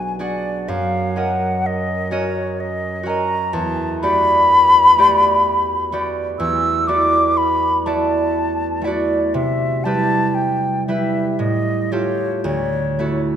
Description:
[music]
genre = classical, impressionist duo for flute and harp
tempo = 56-64 BPM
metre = 3/4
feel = rubato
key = F# major, D major from 3.5 s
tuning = A4 = 440 Hz
[part]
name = mellow concert flute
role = melody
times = 0.0-13.2 s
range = C#5 to E6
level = -17 LUFS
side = left 2 dB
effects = none
[part]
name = concert harp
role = accompaniment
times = 0.0-13.4 s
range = B1 to F#5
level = -20 LUFS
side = right 2 dB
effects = none
[sound]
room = moderate concert hall reverb, RT60 2.3 s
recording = none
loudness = -15 LUFS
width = side -9 dB against mid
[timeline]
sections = 0.0-13.4 A section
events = none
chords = 0.0 Bm6; 0.7 F#6; 3.5 Em11; 6.4 Dadd9/E; 9.3 Cmaj7; 11.4 Aaug7; 12.5 Dadd9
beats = | 0.67 1.64 2.59 | 3.53 4.50 5.45 | 6.40 7.37 8.35 | 9.34 10.36 11.39 | 12.46

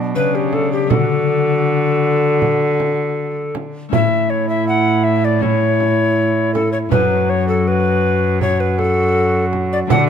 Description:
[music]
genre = classical, renaissance-style consort dance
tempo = 80 BPM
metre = 4/4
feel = straight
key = unclear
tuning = A4 = 440 Hz
[part]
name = clear trombone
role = accompaniment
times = 0.0-10.1 s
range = D4 to F#4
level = -22 LUFS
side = right 1 dB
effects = none
[part]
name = concert harp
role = accompaniment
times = 0.0-10.1 s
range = F#2 to D5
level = -21 LUFS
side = left 8 dB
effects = none
[part]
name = rich cello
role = bass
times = 0.0-10.1 s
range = F#2 to D3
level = -21 LUFS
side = right 4 dB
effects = none
[part]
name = mellow hollow tenor recorder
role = melody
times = 0.2-10.1 s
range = G4 to F#5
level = -18 LUFS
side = left 2 dB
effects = none
[part]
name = frame drum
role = percussion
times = 0.5-10.1 s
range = none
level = -21 LUFS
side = right 6 dB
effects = none
[sound]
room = moderate stone room reverb, RT60 1.3 s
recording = close, detailed microphones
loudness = -14 LUFS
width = side -8 dB against mid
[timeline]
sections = 0.0-10.1 A section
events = none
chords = 0.0 Bm; 0.9 D; 3.9 A; 6.9 F#m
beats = 0.16 | 0.91 1.66 2.42 3.17 | 3.93 4.68 5.43 6.17 | 6.92 7.67 8.41 9.16 | 9.91

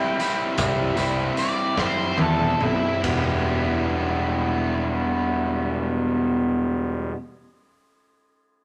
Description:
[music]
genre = indie rock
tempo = 46-52 BPM (dotted quarters)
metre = 6/8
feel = straight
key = E minor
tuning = A4 = 440 Hz
[part]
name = octave-fuzz lead guitar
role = melody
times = 0.0-3.0 s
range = E4 to G5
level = -29 LUFS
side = equal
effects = distortion
[part]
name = crunchy overdriven guitar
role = riff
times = 0.0-7.2 s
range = E2 to G4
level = -30 LUFS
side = equal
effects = none
[part]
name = distorted electric guitar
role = riff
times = 0.0-7.2 s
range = G3 to G4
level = -28 LUFS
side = equal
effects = overdrive
[part]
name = raw garage drum kit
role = drums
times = 0.2-3.2 s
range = hi-hat, kick drum, ride cymbal, snare drum, toms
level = -31 LUFS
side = equal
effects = none
[part]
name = fuzz picked electric bass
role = bass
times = 0.6-7.1 s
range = E1 to E2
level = -28 LUFS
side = equal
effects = overdrive
[sound]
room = moderate large studio reverb, RT60 0.9 s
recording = none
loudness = -23 LUFS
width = mono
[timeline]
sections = 0.0-3.0 A section; 3.0-5.7 B section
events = slowing down 0.0-3.0; lead electric guitar solo 0.0-3.0; drum fill 1.8-3.0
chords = 0.0 C; 3.0 Em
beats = | 0.57 1.77 | 3.04 4.35

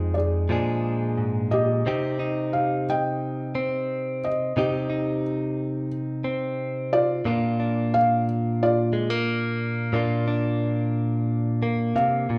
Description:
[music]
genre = acoustic folk-pop ballad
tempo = 89 BPM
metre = 4/4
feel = straight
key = unclear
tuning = A4 = 440 Hz
[part]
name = felt-muted upright piano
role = melody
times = 0.0-12.4 s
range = F4 to G5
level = -27 LUFS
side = equal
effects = none
[part]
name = direct-recorded clean electric guitar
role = accompaniment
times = 0.0-12.4 s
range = F2 to Ab4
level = -26 LUFS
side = equal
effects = none
[sound]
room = moderate large studio reverb, RT60 0.8 s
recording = band playing live in one room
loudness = -25 LUFS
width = mono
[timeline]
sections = 0.0-1.9 A section; 1.9-12.4 B section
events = none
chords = 0.5 Bb7; 1.9 Cm; 7.2 Bb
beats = 0.50 1.18 | 1.85 2.53 3.21 3.89 | 4.56 5.24 5.91 6.58 | 7.25 7.92 8.59 9.26 | 9.93 10.61 11.28 11.95

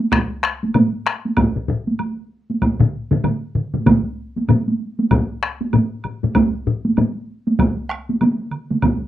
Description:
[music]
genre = japanese traditional, taiko drum ensemble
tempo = 96 BPM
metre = 4/4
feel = swing 60% on 16ths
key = none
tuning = none
[part]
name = taiko ensemble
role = percussion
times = 0.0-9.0 s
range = none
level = -18 LUFS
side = right 2 dB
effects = none
[part]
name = solo taiko drums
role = percussion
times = 0.1-9.0 s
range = none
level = -22 LUFS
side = equal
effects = none
[part]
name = taiko ensemble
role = percussion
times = 0.1-7.1 s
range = none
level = -20 LUFS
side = left 4 dB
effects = none
[part]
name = woodblock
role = percussion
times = 0.1-9.0 s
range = none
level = -27 LUFS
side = right 3 dB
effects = none
[part]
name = taiko ensemble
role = percussion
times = 2.8-9.0 s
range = none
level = -24 LUFS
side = right 2 dB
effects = none
[sound]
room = moderate small room reverb, RT60 0.5 s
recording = rough home demo mix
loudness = -17 LUFS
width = side -13 dB against mid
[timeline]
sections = 0.0-9.1 A section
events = none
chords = none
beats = | 0.12 0.74 1.37 1.99 | 2.62 3.24 3.86 4.49 | 5.11 5.73 6.35 6.97 | 7.59 8.21 8.83

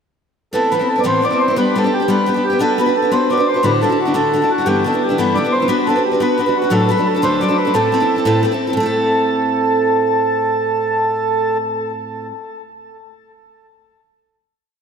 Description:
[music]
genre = celtic folk, Celtic jig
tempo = 117 BPM (dotted quarters)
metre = 6/8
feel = straight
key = A dorian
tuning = A4 = 442 Hz
[part]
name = mellow accordion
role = melody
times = 0.5-11.6 s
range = F#4 to D5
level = -17 LUFS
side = equal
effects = ping-pong delay
[part]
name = picked steel-string acoustic guitar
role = accompaniment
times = 0.5-12.4 s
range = D2 to B4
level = -17 LUFS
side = equal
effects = none
[sound]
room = wet lush hall reverb, RT60 2.8 s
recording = dreamy mix soaked in reverb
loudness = -14 LUFS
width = side -6 dB against mid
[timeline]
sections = 0.5-8.8 A section; 8.8-10.8 final chord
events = none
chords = 0.5 Amadd9; 1.6 G; 2.6 Bm; 3.6 Dadd9; 4.7 G6; 5.7 Bm; 6.7 D; 7.7 Am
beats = | 0.53 1.05 | 1.57 2.08 | 2.60 3.12 | 3.64 4.15 | 4.67 5.18 | 5.70 6.21 | 6.72 7.24 | 7.75 8.26 | 8.77 9.28 | 9.79 10.31

